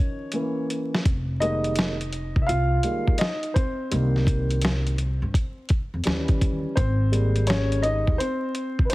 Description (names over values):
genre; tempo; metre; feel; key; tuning
hip hop, jazz-hop; 84 BPM; 4/4; swing 65% on 16ths; F minor; A4 = 440 Hz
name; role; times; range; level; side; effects
dark baby grand piano; accompaniment; 0.0-8.9 s; Eb3 to F5; -26 LUFS; equal; none
dusty soul sampler-style drum kit; drums; 0.3-8.9 s; hi-hat, kick drum, snare drum; -23 LUFS; equal; none
upright bass; bass; 1.1-8.9 s; F1 to G2; -24 LUFS; equal; none
room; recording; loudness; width
small room ambience; heavily compressed radio sound, vinyl crackle; -21 LUFS; side -19 dB against mid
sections
0.0-8.9 A section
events
break 0.0-1.1; grand piano solo 0.0-8.9; drum fill 0.3-1.1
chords
0.3 Bbdim/Fb; 1.1 Fm11; 3.9 Cm7; 6.1 Eb7b9; 6.8 Abmaj7